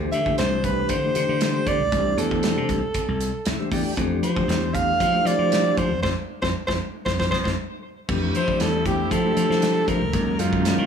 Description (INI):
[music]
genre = electric jazz fusion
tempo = 117 BPM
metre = 4/4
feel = straight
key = unclear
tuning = A4 = 441 Hz
[part]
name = mellow tonewheel organ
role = accompaniment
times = 0.0-10.9 s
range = Eb3 to G5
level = -27 LUFS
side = left 5 dB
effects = slow rotary speaker
[part]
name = slap bass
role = bass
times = 0.0-10.9 s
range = C2 to F3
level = -25 LUFS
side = equal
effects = none
[part]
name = breathy soprano saxophone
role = melody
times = 0.1-10.9 s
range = F4 to F5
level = -24 LUFS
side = right 2 dB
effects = tape echo
[part]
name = modern studio drum kit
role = drums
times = 0.1-10.8 s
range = crash cymbal, hi-hat, kick drum, snare drum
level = -27 LUFS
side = right 2 dB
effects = none
[part]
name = clear symphonic string section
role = sustained chords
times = 8.1-10.9 s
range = C3 to E4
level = -31 LUFS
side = right 2 dB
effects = none
[sound]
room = moderate club reverb, RT60 0.7 s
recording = small room ambience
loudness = -20 LUFS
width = side -7 dB against mid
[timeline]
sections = 0.0-8.1 A section; 8.1-10.9 A section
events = tonewheel organ fill 3.2-4.0; band accent 6.0-8.1; drum fill 7.1-8.1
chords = 0.0 C69; 4.0 Fmaj7; 10.1 Ebm7